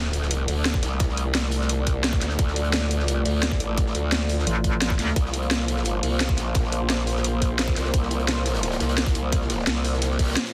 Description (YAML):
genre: dark technical drum and bass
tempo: 173 BPM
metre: 4/4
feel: straight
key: D minor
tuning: A4 = 440 Hz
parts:
  - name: dark analog pad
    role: sustained chords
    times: 0.0-10.5 s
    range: A3 to D5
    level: -32 LUFS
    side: equal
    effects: chorus, sidechain pumping
  - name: growl bass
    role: bass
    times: 0.0-10.4 s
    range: A1 to D2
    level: -27 LUFS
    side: equal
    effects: chorus
  - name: crunchy breakbeat drum kit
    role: drums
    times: 0.0-10.5 s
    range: hi-hat, snare drum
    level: -38 LUFS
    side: equal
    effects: high-pass filter on hats, small room ambience, high-pass filter on snare, high-pass filter on room
  - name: impact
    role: sound effects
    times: 0.0-1.0 s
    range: none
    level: -45 LUFS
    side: equal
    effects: none
  - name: drum and bass drum kit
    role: drums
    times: 0.1-10.4 s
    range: hi-hat, snare drum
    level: -29 LUFS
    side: equal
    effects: small room ambience
  - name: electronic kick drum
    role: drums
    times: 0.7-10.3 s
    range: none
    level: -26 LUFS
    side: equal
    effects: small room ambience
  - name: metallic wobble bass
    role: bass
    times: 4.5-5.1 s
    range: A1 to D2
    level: -26 LUFS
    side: equal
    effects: chorus
room: light reverb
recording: dense, heavily limited modern master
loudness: -24 LUFS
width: mono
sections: 0.0-10.5 A section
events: impact 0.0-1.0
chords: 0.0 Dm; 5.2 C7sus4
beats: 0.31 0.66 | 1.00 1.35 1.70 2.04 | 2.39 2.73 3.08 3.43 | 3.78 4.12 4.47 4.82 | 5.16 5.51 5.86 6.20 | 6.55 6.90 7.24 7.59 | 7.94 8.29 8.63 8.98 | 9.32 9.67 10.02 10.37